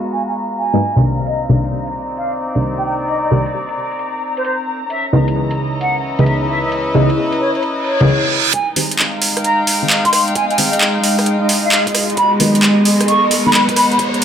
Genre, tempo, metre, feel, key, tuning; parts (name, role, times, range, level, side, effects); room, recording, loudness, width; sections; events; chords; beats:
UK garage, two-step garage; 132 BPM; 4/4; swing 67% on 16ths; A4 = 435 Hz
ethereal airy pad; sustained chords; 0.0-14.2 s; Eb5 to Bb5; -25 LUFS; equal; ensemble chorus, built-in reverb, tremolo, sidechain pumping
dark studio string section; texture; 0.0-14.2 s; Ab3 to Bb5; -19 LUFS; equal; sidechain pumping
wooden flute; melody; 0.1-14.0 s; C5 to Db6; -18 LUFS; equal; analog delay
garage drum kit; drums; 0.1-14.2 s; handclaps, hi-hat, rim click; -16 LUFS; right 1 dB; overdrive, high-pass filter on hats, low-pass filter on hats, studio reverb, high-pass filter on snare, low-pass filter on snare
deep mellow chord stab; stabs; 0.7-14.2 s; C3 to Eb5; -17 LUFS; equal; chorus, phaser, analog delay
reverse cymbal and riser; sound effects; 7.8-14.2 s; -22 LUFS; right 4 dB
electronic kick drum; drums; 8.5-14.1 s; -31 LUFS; equal
wet spring reverb, RT60 1.6 s, digital ambience; echo-heavy mix, low-pass filter; -13 LUFS; side -8 dB against mid
0.0-8.5 A section; 8.5-14.2 B section
filter sweep on synth stab 0.0-8.5, 8.5-14.2; filter sweep 0.0-8.5; reverse cymbal 7.8-8.5; build-up 8.5-14.2; riser 8.5-14.2
0.0 Abm9; 1.0 Cm9; 4.9 Dbm9; 8.5 Fm9; 12.2 Abm9
0.35 0.81 | 1.26 1.72 2.17 2.63 | 3.08 3.54 3.99 4.45 | 4.90 5.36 5.81 6.26 | 6.72 7.17 7.63 8.08 | 8.54 8.99 9.45 9.90 | 10.36 10.81 11.26 11.72 | 12.17 12.63 13.08 13.54 | 13.99